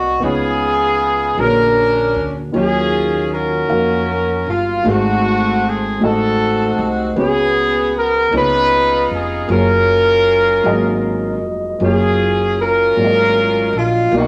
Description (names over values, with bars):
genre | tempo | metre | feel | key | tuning
slow gospel | 52 BPM (dotted quarters) | 6/8 | straight | F# major | A4 = 439 Hz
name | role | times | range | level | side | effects
warm horn section | melody | 0.0-14.3 s | A3 to B4 | -17 LUFS | equal | none
dark upright piano | accompaniment | 0.0-14.3 s | G#2 to E#5 | -22 LUFS | equal | none
upright bass | bass | 0.0-14.3 s | E#1 to E#2 | -25 LUFS | equal | none
room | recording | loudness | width
wet studio reverb, RT60 0.6 s | none | -16 LUFS | mono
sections
0.0-11.8 A section; 11.8-14.3 A section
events
none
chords
0.2 C#9; 1.4 A#7alt; 2.5 D#m9; 4.8 G#7b9; 7.2 C#7sus4; 8.3 C#9; 9.5 F#maj9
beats
| 0.22 1.38 | 2.53 3.69 | 4.85 6.01 | 7.16 8.32 | 9.48 10.64 | 11.80 12.96 | 14.12